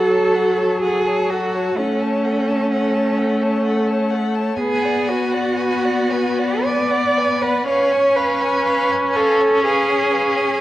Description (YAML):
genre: classical, slow romantic movement for string quartet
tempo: 54-65 BPM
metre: 3/4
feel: rubato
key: F# minor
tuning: A4 = 439 Hz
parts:
  - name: rich violin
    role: melody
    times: 0.0-10.6 s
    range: E#5 to A5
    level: -29 LUFS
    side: left 5 dB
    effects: none
  - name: dark violin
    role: second line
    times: 0.0-10.6 s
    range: A4 to D5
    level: -26 LUFS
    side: left 3 dB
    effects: none
  - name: rich viola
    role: accompaniment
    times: 0.0-10.6 s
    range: F#3 to C#4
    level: -21 LUFS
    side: equal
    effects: none
  - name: rich cello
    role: bass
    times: 0.0-10.6 s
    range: C#4 to D5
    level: -18 LUFS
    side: right 1 dB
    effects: none
room: wet recital hall reverb, RT60 1.3 s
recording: worn, warbling old tape, cassette tape, warbly pitch drift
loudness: -16 LUFS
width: side -15 dB against mid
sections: 0.0-10.6 A section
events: none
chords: 0.0 F#m; 1.8 F#m/A; 4.6 G#m7b5/B; 7.7 C#7